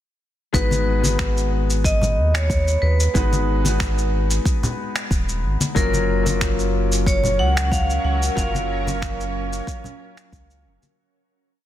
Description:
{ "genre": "sunset chillout", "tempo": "92 BPM", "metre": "4/4", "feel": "swing 54% on 16ths", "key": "G# dorian", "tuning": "A4 = 441 Hz", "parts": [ { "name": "vibraphone with hard mallets", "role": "melody", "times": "0.5-10.6 s", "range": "A#4 to F#5", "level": "-25 LUFS", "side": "equal", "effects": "tape echo" }, { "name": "clear concert grand piano", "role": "accompaniment", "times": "0.5-11.0 s", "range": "F#3 to B4", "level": "-26 LUFS", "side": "moving between left 7 dB and right 3 dB", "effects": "auto-pan, tape echo" }, { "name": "round analog bass", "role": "bass", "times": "0.5-10.8 s", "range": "D#1 to D#2", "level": "-21 LUFS", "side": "equal", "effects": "none" }, { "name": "electronic kick drum", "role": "drums", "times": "0.5-10.5 s", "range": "none", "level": "-22 LUFS", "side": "equal", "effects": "none" }, { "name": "electronic shaker and finger snaps", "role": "drums", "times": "0.5-10.9 s", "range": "none", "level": "-28 LUFS", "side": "equal", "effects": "soft clipping on snare" }, { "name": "congas", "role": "percussion", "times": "0.7-10.9 s", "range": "none", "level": "-26 LUFS", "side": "left 2 dB", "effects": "none" }, { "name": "shimmering ambient pad", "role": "sustained chords", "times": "6.8-10.9 s", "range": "F#3 to C#5", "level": "-31 LUFS", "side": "right 1 dB", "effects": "chorus, built-in reverb" } ], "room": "light reverb, small room ambience", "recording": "dense, heavily limited modern master", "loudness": "-18 LUFS", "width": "side -12 dB against mid", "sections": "0.5-11.0 groove", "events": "fade-out 7.5-11.0", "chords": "0.5 G#m7; 5.8 F#maj7" }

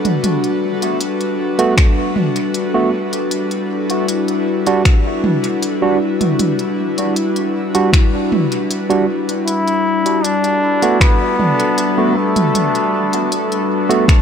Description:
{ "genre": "ambient dub", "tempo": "78 BPM", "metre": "4/4", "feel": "straight", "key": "unclear", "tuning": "A4 = 436 Hz", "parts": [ { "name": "airy breathy pad", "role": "sustained chords", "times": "0.0-14.2 s", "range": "G3 to B4", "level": "-18 LUFS", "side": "left 2 dB", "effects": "chorus" }, { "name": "organic electronic drum kit", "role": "drums", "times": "0.1-14.2 s", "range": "finger snaps, hi-hat, toms", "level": "-20 LUFS", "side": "right 2 dB", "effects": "studio reverb, dub echo" }, { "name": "barky tine electric piano", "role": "stabs", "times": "1.6-14.0 s", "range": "G3 to F#4", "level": "-20 LUFS", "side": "right 4 dB", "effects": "vintage 12-bit sampler grit, dub echo" }, { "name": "electronic kick drum", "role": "drums", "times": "1.8-14.2 s", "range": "none", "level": "-11 LUFS", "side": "equal", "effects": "studio reverb" }, { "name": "brilliant trombone", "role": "melody", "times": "9.5-13.7 s", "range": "A3 to E4", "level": "-17 LUFS", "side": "left 1 dB", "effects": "dub echo" } ], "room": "light reverb", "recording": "none", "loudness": "-14 LUFS", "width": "side -7 dB against mid", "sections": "0.0-14.2 A section", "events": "none", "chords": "0.0 Gmaj9" }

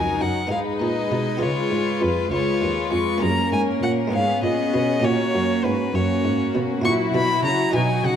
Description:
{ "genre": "classical, baroque-style concerto movement with solo episodes", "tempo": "66 BPM (dotted quarters)", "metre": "6/8", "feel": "straight", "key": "F# major", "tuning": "A4 = 440 Hz", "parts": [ { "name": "clear chamber violin section", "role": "melody", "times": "0.0-8.2 s", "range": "F#4 to B4", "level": "-31 LUFS", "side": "left 3 dB", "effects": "none" }, { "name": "rich violin", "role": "melody", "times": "0.0-8.2 s", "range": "B4 to C#6", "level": "-25 LUFS", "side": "left 2 dB", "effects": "none" }, { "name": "rich chamber violin section", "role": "second line", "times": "0.0-8.2 s", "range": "C#4 to E#4", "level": "-26 LUFS", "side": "left 5 dB", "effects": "none" }, { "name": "buff-stop harpsichord", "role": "accompaniment", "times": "0.0-8.2 s", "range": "C#2 to A#4", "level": "-28 LUFS", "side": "right 1 dB", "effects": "none" }, { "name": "rich chamber viola section", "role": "accompaniment", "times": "0.0-8.2 s", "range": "F#3 to B3", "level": "-26 LUFS", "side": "right 3 dB", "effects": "none" }, { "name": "rich chamber cello section", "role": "bass", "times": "0.0-8.2 s", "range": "C#2 to C#3", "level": "-27 LUFS", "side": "right 2 dB", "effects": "none" } ], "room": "moderate recital hall reverb, RT60 1.3 s", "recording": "dark, warm production", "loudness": "-19 LUFS", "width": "side -8 dB against mid", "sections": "0.0-8.2 A section", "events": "none", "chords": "0.0 D#m; 0.5 G#m; 1.4 C#7; 3.2 F#; 4.1 C#5/G#; 5.0 F#; 6.8 F#7/A#" }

